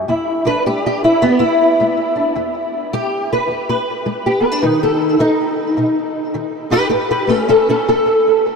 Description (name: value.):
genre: acoustic country blues, solo or duo.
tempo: 105 BPM.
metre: 4/4.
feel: swing 62% on 8ths.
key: unclear.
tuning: A4 = 440 Hz.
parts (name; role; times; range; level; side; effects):
fingerpicked old ladder-braced acoustic guitar; solo; 0.0-8.6 s; E2 to B4; -14 LUFS; equal; ensemble chorus, ping-pong delay.
room: wet huge ambient reverb, RT60 6.9 s.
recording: dreamy mix soaked in reverb.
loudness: -14 LUFS.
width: side -5 dB against mid.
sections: 0.0-8.6 A section.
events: steel-string acoustic guitar solo 0.0-8.6.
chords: 0.1 E7; 4.6 B; 6.9 A7.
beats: | 0.08 0.65 1.22 1.79 | 2.36 2.93 3.50 4.07 | 4.64 5.21 5.78 6.35 | 6.92 7.50 8.07.